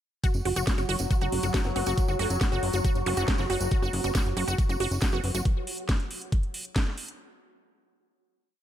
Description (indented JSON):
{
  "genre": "psychedelic trance",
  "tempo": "138 BPM",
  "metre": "4/4",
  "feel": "straight",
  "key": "unclear",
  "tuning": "A4 = 440 Hz",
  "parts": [
    { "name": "bubbling stepped-filter texture", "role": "sustained chords", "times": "0.2-5.5 s", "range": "F#3 to F#4", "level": "-33 LUFS", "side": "equal", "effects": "chorus, built-in reverb, sidechain pumping" },
    { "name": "wide unison pluck", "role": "riff", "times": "0.2-5.4 s", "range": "F#4", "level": "-32 LUFS", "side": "moving between left 3 dB and right 3 dB", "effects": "auto-pan, vintage 12-bit sampler grit, sidechain pumping, ping-pong delay" },
    { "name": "electronic kick drum", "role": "drums", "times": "0.2-6.8 s", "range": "none", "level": "-26 LUFS", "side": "equal", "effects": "small room reverb" },
    { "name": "garage drum kit", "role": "drums", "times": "0.2-7.2 s", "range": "hi-hat, snare drum", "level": "-33 LUFS", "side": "equal", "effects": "small room reverb" },
    { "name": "tambourine", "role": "percussion", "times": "0.2-5.4 s", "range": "none", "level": "-39 LUFS", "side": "right 5 dB", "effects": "none" },
    { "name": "plucky analog bass", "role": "bass", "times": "0.3-5.4 s", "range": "F#1", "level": "-29 LUFS", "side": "equal", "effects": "none" },
    { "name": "formant-sweep wobble bass", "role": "second line", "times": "1.6-5.3 s", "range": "F#3 to B3", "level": "-43 LUFS", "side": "left 2 dB", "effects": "none" },
    { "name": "zap", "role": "sound effects", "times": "3.1-3.2 s", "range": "none", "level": "-38 LUFS", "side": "equal", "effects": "none" }
  ],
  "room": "digital ambience",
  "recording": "none",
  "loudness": "-24 LUFS",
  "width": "side -11 dB against mid",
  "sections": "0.2-7.2 groove",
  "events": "none",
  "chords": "none"
}